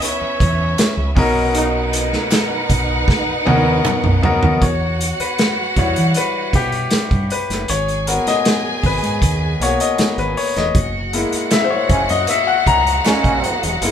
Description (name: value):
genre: lush 1970s-style soul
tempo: 78 BPM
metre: 4/4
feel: straight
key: unclear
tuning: A4 = 439 Hz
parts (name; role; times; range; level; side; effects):
- breathy flugelhorn; melody; 0.0-1.1 s; C#5; -23 LUFS; right 1 dB; none
- rich studio violin section; second line; 0.0-13.9 s; C#4 to G#5; -23 LUFS; right 1 dB; tape echo
- clear baby grand piano; accompaniment; 0.0-13.9 s; B2 to A#5; -19 LUFS; left 3 dB; none
- vintage drum kit; drums; 0.0-13.9 s; hi-hat, kick drum, snare drum, toms; -18 LUFS; right 1 dB; none
- fingered electric bass; bass; 0.2-13.9 s; E1 to E3; -22 LUFS; right 1 dB; none
- group handclap; percussion; 0.8-4.0, 11.5-13.2 s; none; -30 LUFS; right 4 dB; none
- clear trombone section; stabs; 1.5-2.1, 11.5-13.8 s; A#2 to E4; -22 LUFS; right 3 dB; none
room: moderate large studio reverb, RT60 0.9 s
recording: band playing live in one room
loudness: -14 LUFS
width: side -9 dB against mid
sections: 0.0-4.6 A section; 4.6-13.9 B section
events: band accent 1.6-4.6; drum fill 3.1-4.6; grand piano solo 4.6-13.9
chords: 0.0 C#m7; 1.2 Bmaj7; 4.6 Emadd9; 7.7 G#m9; 10.8 F#9